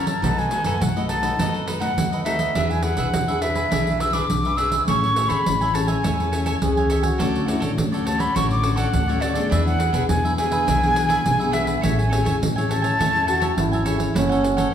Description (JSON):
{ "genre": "samba and choro", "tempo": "104 BPM", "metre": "4/4", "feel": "straight", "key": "A major", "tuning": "A4 = 440 Hz", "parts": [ { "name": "concert flute", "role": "melody", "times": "0.0-13.8 s", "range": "D5 to E6", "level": "-23 LUFS", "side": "equal", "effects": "none" }, { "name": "cavaquinho", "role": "accompaniment", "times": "0.0-14.7 s", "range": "D4 to G#5", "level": "-29 LUFS", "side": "right 3 dB", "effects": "none" }, { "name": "nylon-string guitar", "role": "accompaniment", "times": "0.0-14.7 s", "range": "A2 to B4", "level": "-26 LUFS", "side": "left 4 dB", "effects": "none" }, { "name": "upright bass", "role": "bass", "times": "0.0-14.6 s", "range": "F#1 to F#2", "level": "-25 LUFS", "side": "equal", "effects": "none" }, { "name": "pandeiro", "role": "percussion", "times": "0.1-14.7 s", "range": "none", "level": "-26 LUFS", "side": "right 2 dB", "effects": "none" }, { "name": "breathy trombone", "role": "second line", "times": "6.6-7.9, 13.3-14.7 s", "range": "C#4 to G#4", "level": "-24 LUFS", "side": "right 3 dB", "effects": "none" } ], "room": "wet recital hall reverb, RT60 1.4 s", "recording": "recorded in a church or concert hall", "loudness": "-18 LUFS", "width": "side -9 dB against mid", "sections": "0.0-14.2 A section", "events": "none", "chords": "0.2 B7; 2.6 E7; 4.9 Amaj9; 7.2 Dmaj7; 9.5 E7; 11.8 Amaj7; 14.2 F#m7" }